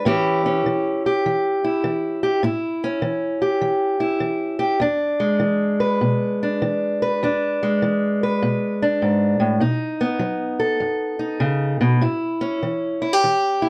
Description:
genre	blues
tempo	100 BPM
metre	4/4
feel	swing 66% on 8ths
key	E mixolydian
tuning	A4 = 440 Hz
part	fingerpicked steel-string acoustic guitar	solo	0.0-13.7 s	E2 to B4	-21 LUFS	equal	none
room	moderate studio reverb, RT60 0.5 s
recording	dark, warm production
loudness	-21 LUFS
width	mono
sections	0.0-13.7 A section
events	none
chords	0.1 A7; 4.8 E7; 9.6 B7; 12.0 A7

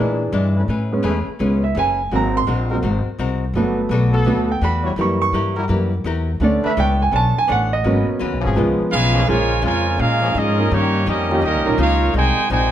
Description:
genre	jazz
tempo	168 BPM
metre	4/4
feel	swing 65% on 8ths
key	F# minor, Bb minor from 9.3 s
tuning	A4 = 436 Hz
part	archtop guitar, miked and amplified	accompaniment	0.0-12.7 s	Ab2 to C#5	-28 LUFS	left 5 dB	none
part	warm baby grand piano	accompaniment	0.0-12.1 s	D3 to C#6	-20 LUFS	right 2 dB	none
part	clear trombone section	sustained chords	0.0-11.8 s	Eb3 to C#5	-27 LUFS	left 2 dB	none
part	upright bass	bass	0.0-12.7 s	F#1 to A#2	-20 LUFS	left 1 dB	none
part	warm trumpet section	melody	8.9-12.7 s	Bb3 to Ab5	-19 LUFS	right 1 dB	none
part	warm trombone section	second line	8.9-12.7 s	C3 to F4	-25 LUFS	right 2 dB	none
room	moderate large studio reverb, RT60 1.1 s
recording	none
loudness	-16 LUFS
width	side -11 dB against mid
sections	0.0-9.3 A section; 9.3-12.7 B section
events	grand piano solo 0.0-9.3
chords	0.0 A#7#11; 0.7 Amaj9; 2.1 G#9; 3.5 Gmaj9; 5.0 F#7b9; 6.4 Bm9; 7.8 G#m11; 8.6 C#7; 9.3 Bbm7; 10.7 Eb7; 12.1 Abmaj7

